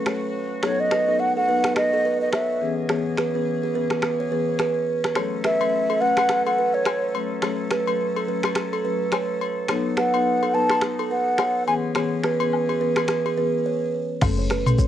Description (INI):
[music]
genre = afrobeats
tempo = 106 BPM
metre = 4/4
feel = swing 58% on 16ths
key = F# dorian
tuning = A4 = 435 Hz
[part]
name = warm woodwind section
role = sustained chords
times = 0.0-14.2 s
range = C#3 to A4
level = -37 LUFS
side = left 1 dB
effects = cassette tape
[part]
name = buzzing kalimba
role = riff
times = 0.1-14.9 s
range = G#4 to C#5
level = -25 LUFS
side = right 6 dB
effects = cassette tape, tape echo
[part]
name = afro-pop drum kit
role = drums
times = 0.1-14.9 s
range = crash cymbal, finger snaps, kick drum, rim click, shaker, toms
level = -24 LUFS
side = equal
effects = cassette tape
[part]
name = breathy mellow silver concert flute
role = melody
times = 0.6-11.7 s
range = C#5 to A5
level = -22 LUFS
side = equal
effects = cassette tape, tape echo
[part]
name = marimba with soft mallets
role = accompaniment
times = 0.6-14.9 s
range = E3 to A4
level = -27 LUFS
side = left 6 dB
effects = cassette tape
[part]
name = agogo bells and woodblock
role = percussion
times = 5.2-14.8 s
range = none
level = -32 LUFS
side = left 12 dB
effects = none
[part]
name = woody log drum bass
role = bass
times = 14.2-14.9 s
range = F#1 to B1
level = -24 LUFS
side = equal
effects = none
[sound]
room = wet booth ambience, RT60 0.2 s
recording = home recording on cassette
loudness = -20 LUFS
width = side -11 dB against mid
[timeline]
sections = 0.0-14.2 A section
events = break 0.0-5.2, 13.7-14.2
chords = 0.0 F#m; 0.6 B7; 2.6 C#m7; 5.2 F#m; 9.7 B7; 11.7 C#m7; 14.2 F#m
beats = 0.07 | 0.63 1.20 1.76 2.33 | 2.90 3.46 4.03 4.59 | 5.16 5.73 6.29 6.86 | 7.43 7.99 8.56 9.12 | 9.69 10.26 10.82 11.39 | 11.95 12.52 13.09 13.65 | 14.22 14.78